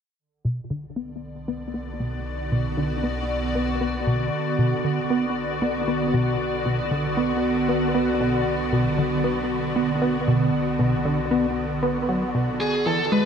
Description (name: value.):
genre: ambient.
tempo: 116 BPM.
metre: 4/4.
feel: straight.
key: B minor.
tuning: A4 = 444 Hz.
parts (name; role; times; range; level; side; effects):
evolving wavetable pad; sustained chords; 1.2-13.3 s; D3 to D5; -24 LUFS; equal; ensemble chorus, built-in reverb.
analog drone; bass; 1.1-13.3 s; B1 to E2; -35 LUFS; equal; chorus.
plucky analog bass; riff; 0.4-13.3 s; B2 to B3; -24 LUFS; equal; wide subtle chorus, tape echo.
high-gain lead guitar; melody; 12.6-13.3 s; G#4 to B4; -22 LUFS; right 1 dB; distortion.
room: moderate plate reverb, RT60 2.9 s.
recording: none.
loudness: -21 LUFS.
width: side -7 dB against mid.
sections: 0.2-4.3 A section; 4.3-13.3 B section.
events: fade-in on ambient pad 0.2-4.3; fade-in on synth drone 0.2-4.3, 4.3-13.3; filter sweep on analog synth bass 0.2-4.3.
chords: 0.2 Bm; 12.6 E.